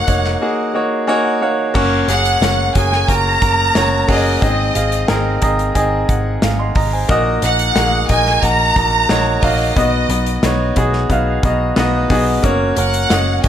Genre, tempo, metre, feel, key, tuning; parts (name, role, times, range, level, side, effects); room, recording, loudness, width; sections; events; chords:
piano-driven pop; 90 BPM; 4/4; straight; F# major; A4 = 437 Hz
warm studio violin section; melody; 0.0-13.5 s; D#5 to A#5; -17 LUFS; right 1 dB
clear concert grand piano; accompaniment; 0.0-13.5 s; G#2 to B#5; -17 LUFS; equal
vintage muted picked electric bass; bass; 0.1-13.5 s; E#1 to B1; -19 LUFS; equal
modern studio drum kit; drums; 0.1-13.5 s; crash cymbal, hi-hat, kick drum, snare drum; -20 LUFS; equal
light reverb, small room ambience; -13 LUFS; side -10 dB against mid
0.0-1.8 A section; 1.8-13.5 B section
grand piano fill 0.7-1.8, 5.1-7.1
0.0 D#m7; 1.8 F#; 4.4 G#; 7.1 D#m/A#; 9.8 B; 12.4 F#